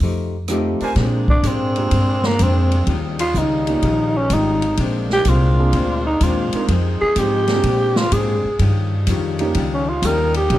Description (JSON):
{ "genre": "jazz, big band swing", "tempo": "126 BPM", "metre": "4/4", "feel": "swing 67% on 8ths", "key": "Bb mixolydian", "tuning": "A4 = 440 Hz", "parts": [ { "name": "archtop guitar, miked and amplified", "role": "accompaniment", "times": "0.0-10.6 s", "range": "Bb2 to Ab4", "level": "-25 LUFS", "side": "left 5 dB", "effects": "none" }, { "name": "upright bass", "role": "bass", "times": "0.0-10.6 s", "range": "Ab1 to Bb2", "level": "-19 LUFS", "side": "equal", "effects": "none" }, { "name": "swinging big-band drum kit", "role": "drums", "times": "0.0-10.6 s", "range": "hi-hat, kick drum, ride cymbal, rim click, snare drum", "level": "-25 LUFS", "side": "equal", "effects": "none" }, { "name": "warm grand piano", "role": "accompaniment", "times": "0.5-10.6 s", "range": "Ab3 to Bb4", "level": "-24 LUFS", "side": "right 4 dB", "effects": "none" }, { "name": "warm trumpet section", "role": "stabs", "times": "0.8-0.9 s", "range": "D4 to Ab5", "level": "-26 LUFS", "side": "right 1 dB", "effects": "none" }, { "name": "bright saxophone section", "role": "sustained chords", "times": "1.0-10.6 s", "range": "C3 to Ab4", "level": "-30 LUFS", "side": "right 1 dB", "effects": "none" }, { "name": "growling tenor saxophone", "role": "melody", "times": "1.3-10.6 s", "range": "Bb3 to Bb4", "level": "-19 LUFS", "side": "right 1 dB", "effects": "none" } ], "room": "light reverb", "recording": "dark, warm production", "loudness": "-16 LUFS", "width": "side -14 dB against mid", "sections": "1.0-10.6 A section", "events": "tenor saxophone solo 1.0-10.6", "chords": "0.0 F9; 1.0 Bb9; 2.9 Eb9; 4.8 Bb9; 6.7 Fm7; 7.7 Bb9; 8.6 Eb9" }